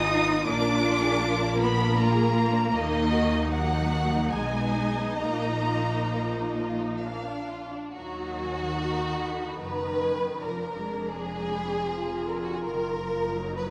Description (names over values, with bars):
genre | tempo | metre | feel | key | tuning
classical, slow romantic movement for string orchestra | 65-82 BPM | 3/4 | rubato | Eb minor | A4 = 438 Hz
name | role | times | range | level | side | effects
rich symphonic violin section | melody | 0.0-13.7 s | Eb5 to Eb6 | -35 LUFS | equal | none
warm symphonic violin section | second line | 0.0-13.7 s | Ab3 to F5 | -33 LUFS | equal | none
warm symphonic viola section | accompaniment | 0.0-13.7 s | D3 to F4 | -33 LUFS | equal | none
warm symphonic cello section | bass | 0.0-13.7 s | F2 to Eb4 | -34 LUFS | equal | none
warm symphonic double bass section | bass | 0.0-13.7 s | F1 to Eb2 | -34 LUFS | equal | none
room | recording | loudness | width
moderate scoring stage reverb, RT60 2.0 s | none | -27 LUFS | mono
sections
0.0-7.9 A section; 7.9-13.7 B section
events
none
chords
0.5 Bb; 2.8 Ebm; 4.3 Abm/Cb; 5.2 Bbsus4; 7.1 Bb; 7.9 Ebm; 10.4 Bb7/F; 12.6 Ebm/Gb